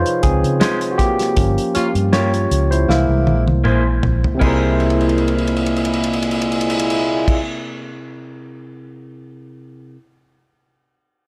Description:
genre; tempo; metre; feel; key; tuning
lush 1970s-style soul; 79 BPM; 4/4; swing 54% on 16ths; unclear; A4 = 440 Hz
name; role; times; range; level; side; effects
barky tine electric piano; accompaniment; 0.0-10.0 s; C3 to Eb5; -24 LUFS; equal; none
vintage muted fingered electric bass; bass; 0.0-7.4 s; G1 to Db3; -21 LUFS; equal; none
damped 70s drum kit; drums; 0.1-8.9 s; crash cymbal, hi-hat, kick drum, ride cymbal, snare drum, toms; -23 LUFS; equal; none
electric guitar through a small old amp; riff; 0.6-7.9 s; Ab3 to Db5; -25 LUFS; equal; spring reverb
mellow horn section; stabs; 1.7-7.4 s; Bb2 to F4; -24 LUFS; equal; none
room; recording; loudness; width
light reverb, studio reverb; none; -17 LUFS; mono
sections
0.0-4.4 A section; 4.4-7.5 B section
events
tine electric piano solo 0.0-4.4; band accent 1.4-4.4; drum fill 2.9-4.4, 4.8-7.3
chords
0.0 Dbmaj7; 1.4 Gm7b5; 2.9 C7b13

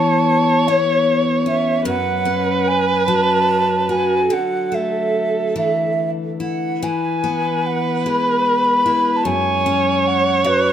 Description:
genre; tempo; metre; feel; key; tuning
celtic folk, Celtic slow air; 49 BPM (dotted quarters); 6/8; rubato; unclear; A4 = 439 Hz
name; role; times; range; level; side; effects
breathy mellow wooden flute; melody; 0.0-10.7 s; B4 to B5; -19 LUFS; equal; none
dark viola; second line; 0.0-10.7 s; A4 to C#5; -20 LUFS; right 4 dB; none
picked steel-string acoustic guitar; accompaniment; 0.0-10.7 s; F#2 to F#4; -20 LUFS; left 3 dB; none
room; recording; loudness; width
light reverb; close, detailed microphones; -15 LUFS; side -9 dB against mid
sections
0.0-10.7 A section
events
none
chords
0.0 Aadd9/E; 1.9 F#5; 4.3 Dsus2; 6.8 E; 9.2 F#sus2

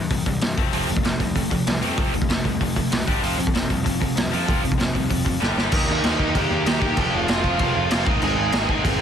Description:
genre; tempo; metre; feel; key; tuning
punk rock; 192 BPM; 4/4; straight; unclear; A4 = 440 Hz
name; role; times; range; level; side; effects
tight distorted guitar; riff; 0.0-9.0 s; Ab2 to G4; -26 LUFS; left 16 dB; distortion
fuzz picked electric bass; bass; 0.0-9.0 s; F1 to G2; -28 LUFS; equal; overdrive
raw garage drum kit; drums; 0.1-8.9 s; crash cymbal, hi-hat, kick drum, snare drum; -22 LUFS; equal; none
overdriven electric guitar; riff; 0.7-9.0 s; F2 to Eb4; -26 LUFS; right 12 dB; none
dark smooth lead guitar; melody; 5.9-9.0 s; Eb4 to Ab5; -26 LUFS; right 2 dB; overdrive, tape echo
room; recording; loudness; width
little or no reverb; dense, heavily limited modern master; -19 LUFS; side -8 dB against mid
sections
0.0-5.7 A section; 5.7-9.0 B section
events
drum fill 5.4-5.7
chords
0.0 C; 0.6 F; 3.1 G5; 3.2 F5; 5.4 G5; 5.7 Eb; 7.0 F; 8.1 Ab

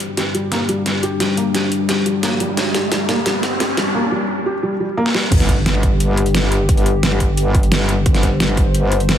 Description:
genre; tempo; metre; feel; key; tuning
dark technical drum and bass; 175 BPM; 4/4; straight; unclear; A4 = 440 Hz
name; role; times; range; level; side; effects
dark analog pad; sustained chords; 0.0-9.2 s; G3 to C5; -22 LUFS; left 3 dB; lush chorus, sidechain pumping
dubstep drum kit; drums; 0.0-9.2 s; crash cymbal, hi-hat, snare drum, toms; -20 LUFS; equal; overdrive, high-pass filter on hats, high-pass filter on snare, high-pass filter on toms, high-pass filter on cymbals, high-pass filter on room
riser and impact; sound effects; 1.8-6.7 s; none; -24 LUFS; equal; none
felt-muted upright piano; arpeggios; 0.2-5.2 s; G3 to G4; -21 LUFS; equal; sidechain pumping, low-pass filter, digital delay
metallic wobble bass; bass; 5.3-9.2 s; G1; -18 LUFS; equal; chorus, tube saturation, sidechain pumping
electronic kick drum; drums; 5.3-8.6 s; none; -17 LUFS; equal; overdrive
room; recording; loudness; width
moderate lush hall reverb, RT60 1.9 s; heavily compressed radio sound; -15 LUFS; side -10 dB against mid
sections
0.0-5.3 A section; 5.3-9.2 B section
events
build-up 0.0-5.3; drum fill 0.0-3.9, 5.1; filter sweep on felt piano 0.0-5.3; riser 1.8-3.9; drop 5.3-9.2; impact 5.3-6.7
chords
0.0 G5

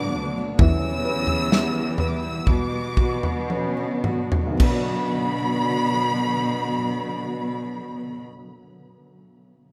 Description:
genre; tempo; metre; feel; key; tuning
pop ballad; 53-69 BPM; 4/4; straight; B minor; A4 = 435 Hz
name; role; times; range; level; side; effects
rich studio violin section; melody; 0.0-8.2 s; B5 to E6; -31 LUFS; equal; none
mellow French horn section; second line; 0.0-8.2 s; B3 to D4; -36 LUFS; equal; none
dark upright piano; accompaniment; 0.0-9.7 s; B1 to E5; -32 LUFS; equal; none
granular cloud pad; sustained chords; 0.0-8.2 s; D3 to B3; -36 LUFS; equal; built-in reverb
picked steel-string acoustic guitar; arpeggios; 0.0-8.3 s; E2 to G4; -37 LUFS; equal; none
clear symphonic cello section; bass; 0.0-8.2 s; D2 to B2; -30 LUFS; equal; none
modern studio drum kit; drums; 0.6-4.9 s; crash cymbal, kick drum, snare drum, toms; -24 LUFS; equal; none
room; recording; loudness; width
small room reverb; rough home demo mix; -23 LUFS; mono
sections
0.0-4.6 A section; 4.6-9.1 B section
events
slowing down 0.0-4.6; drum fill 3.5-4.6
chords
0.0 Bm; 0.6 Em; 2.5 Bm

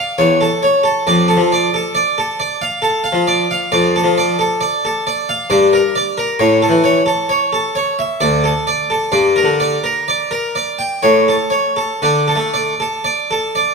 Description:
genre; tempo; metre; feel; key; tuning
classical, baroque-style suite movement for harpsichord; 58-69 BPM; 3/4; rubato; D minor from 3.7 s; A4 = 441 Hz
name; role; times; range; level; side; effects
harpsichord; solo; 0.0-13.7 s; D2 to G5; -13 LUFS; equal; none
room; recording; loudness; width
moderate scoring stage reverb, RT60 1.6 s; none; -13 LUFS; side -4 dB against mid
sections
0.0-13.7 A section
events
none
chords
0.2 A/E; 1.1 Dm/F; 5.5 Gm; 6.4 A; 8.2 D5; 9.1 Gm; 11.0 A; 12.0 D5

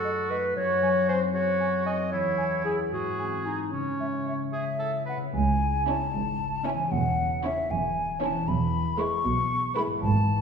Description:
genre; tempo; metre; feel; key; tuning
cinematic, playful, whimsical film cue; 77 BPM (dotted quarters); 6/8; straight; C# minor; A4 = 439 Hz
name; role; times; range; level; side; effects
clear clarinet; second line; 0.0-4.5 s; C#4 to D#5; -27 LUFS; equal; none
clear oboe; second line; 0.0-5.2 s; E4 to C#5; -34 LUFS; right 3 dB; none
mellow hollow silver concert flute; second line; 0.0-10.4 s; D#5 to C#6; -30 LUFS; left 1 dB; none
concert harp; arpeggios; 0.0-10.4 s; E2 to B4; -32 LUFS; left 4 dB; none
dark studio cello section; bass; 5.3-10.4 s; C#2 to B2; -31 LUFS; right 2 dB; none
rich studio double bass section; bass; 5.3-10.4 s; E1 to C#2; -30 LUFS; right 2 dB; none
dark studio violin section; melody; 5.9-10.0 s; B4 to C#5; -40 LUFS; left 3 dB; none
rich studio violin section; second line; 5.9-10.0 s; E4; -40 LUFS; equal; none
warm studio viola section; accompaniment; 5.9-10.0 s; G#3 to C#4; -36 LUFS; right 1 dB; none
room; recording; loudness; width
wet recital hall reverb, RT60 1.6 s; heard from further back in the room; -24 LUFS; side -6 dB against mid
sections
0.0-5.3 A section; 5.3-10.4 B section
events
none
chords
0.0 D#dim/F#; 0.6 G#7/F#; 2.1 C#m/E; 2.9 G#7b9; 3.7 C#m; 6.9 C#m/E; 8.5 E

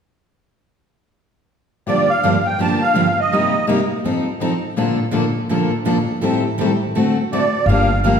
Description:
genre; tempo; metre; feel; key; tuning
acoustic string swing (jazz manouche); 166 BPM; 4/4; swing 61% on 8ths; G minor; A4 = 440 Hz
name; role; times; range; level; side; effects
musette accordion; melody; 1.9-3.7, 7.3-8.2 s; D5 to A5; -17 LUFS; right 2 dB; none
picked steel-string acoustic guitar; accompaniment; 1.9-8.2 s; G2 to A4; -19 LUFS; left 3 dB; none
picked steel-string acoustic guitar; accompaniment; 1.9-8.1 s; G2 to A4; -22 LUFS; right 4 dB; none
upright bass; bass; 7.7-8.2 s; G1; -16 LUFS; equal; none
room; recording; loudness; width
wet recital hall reverb, RT60 1.5 s; recorded in a church or concert hall; -15 LUFS; side -7 dB against mid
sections
1.9-7.7 A section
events
none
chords
1.9 Gm7; 3.3 Cm7; 4.0 F7; 4.8 Bbmaj7; 6.2 Am7b5; 6.9 D7; 7.7 Gm7

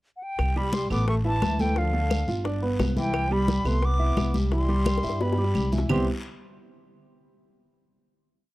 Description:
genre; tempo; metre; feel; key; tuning
Afro-Cuban jazz; 174 BPM; 4/4; straight; C major; A4 = 440 Hz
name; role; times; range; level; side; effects
bright concert flute; melody; 0.2-6.1 s; F5 to D6; -31 LUFS; equal; none
upright bass; bass; 0.4-6.1 s; G1 to G2; -26 LUFS; equal; none
bongos; percussion; 0.4-6.0 s; none; -33 LUFS; left 5 dB; none
claves; percussion; 0.4-6.0 s; none; -40 LUFS; right 8 dB; none
congas; percussion; 0.4-6.0 s; none; -30 LUFS; left 2 dB; none
guiro; percussion; 0.4-6.0 s; none; -44 LUFS; left 3 dB; none
bright trombone; second line; 0.6-6.1 s; D3 to B3; -34 LUFS; left 2 dB; none
clear grand piano; accompaniment; 0.6-6.1 s; C3 to F5; -29 LUFS; right 1 dB; none
room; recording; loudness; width
small room ambience; dry, close 1970s-style studio recording; -22 LUFS; side -18 dB against mid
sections
0.0-0.4 pickup bar; 0.4-5.9 A section; 5.9-7.3 final chord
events
drum fill 4.9-5.9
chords
0.4 C5; 1.1 A5; 1.8 Dm; 2.4 G6; 3.1 Cmaj7

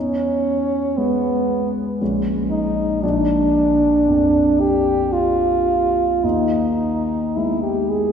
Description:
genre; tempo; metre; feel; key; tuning
classical, romantic duo for French horn and grand piano; 53-59 BPM; 3/4; rubato; unclear; A4 = 440 Hz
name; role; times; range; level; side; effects
warm French horn; melody; 0.0-8.1 s; B3 to G#4; -18 LUFS; equal; none
dark concert grand piano; accompaniment; 0.0-8.1 s; A#1 to C#4; -22 LUFS; equal; none
room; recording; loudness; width
wet church reverb, RT60 3.1 s; minimal, uncompressed stereo recording; -16 LUFS; side -7 dB against mid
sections
0.0-8.1 A section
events
none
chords
0.0 E; 2.0 A#m7; 3.0 A#; 6.2 G#m/D#

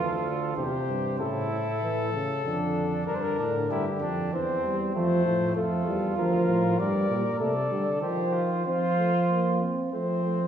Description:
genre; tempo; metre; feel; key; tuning
classical, imitative canzona for brass ensemble; 96 BPM; 3/4; straight; G minor; A4 = 440 Hz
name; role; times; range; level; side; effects
mellow cornet; melody; 0.0-10.5 s; G4 to D5; -31 LUFS; left 5 dB; none
mellow trumpet; second line; 0.0-10.5 s; A3 to Bb4; -32 LUFS; right 4 dB; none
mellow euphonium; accompaniment; 0.0-10.4 s; A2 to C4; -29 LUFS; right 1 dB; none
mellow bass trombone; bass; 0.0-10.5 s; D2 to F3; -30 LUFS; right 1 dB; none
room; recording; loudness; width
wet scoring stage reverb, RT60 1.6 s; recorded in a church or concert hall, small room ambience; -24 LUFS; side -9 dB against mid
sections
0.0-3.1 A section; 3.1-10.5 B section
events
none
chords
0.0 Dm; 0.6 C/E; 1.2 A; 2.4 Dm/F; 3.1 Gm; 4.3 C/E; 4.9 F; 6.2 Bb/D; 6.8 Gm; 8.0 Cm/Eb; 8.7 Fsus4; 9.9 F

